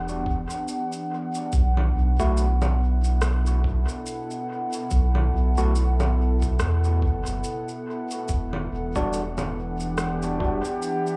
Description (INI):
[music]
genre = ambient dub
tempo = 71 BPM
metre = 4/4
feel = swing 58% on 16ths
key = E minor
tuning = A4 = 442 Hz
[part]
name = warbly tape-like pad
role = sustained chords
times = 0.0-11.2 s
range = B2 to F#5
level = -32 LUFS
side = equal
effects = chorus, built-in reverb
[part]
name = soft dub sub bass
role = bass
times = 0.0-10.6 s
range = E1 to E2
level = -25 LUFS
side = equal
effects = tube saturation
[part]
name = electronic shaker, congas and rim click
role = drums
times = 0.1-11.2 s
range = none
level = -36 LUFS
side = equal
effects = small room ambience, dub echo
[part]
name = electronic kick drum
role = drums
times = 0.3-10.6 s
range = none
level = -30 LUFS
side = equal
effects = small room ambience
[part]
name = overdriven tine electric piano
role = stabs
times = 2.2-10.6 s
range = G3 to F#4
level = -34 LUFS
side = equal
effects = dub echo
[sound]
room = light reverb, digital ambience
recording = small room reverb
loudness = -25 LUFS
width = mono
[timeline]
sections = 0.0-11.2 A section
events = none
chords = 0.0 Em7; 1.5 B7sus4; 8.3 Em7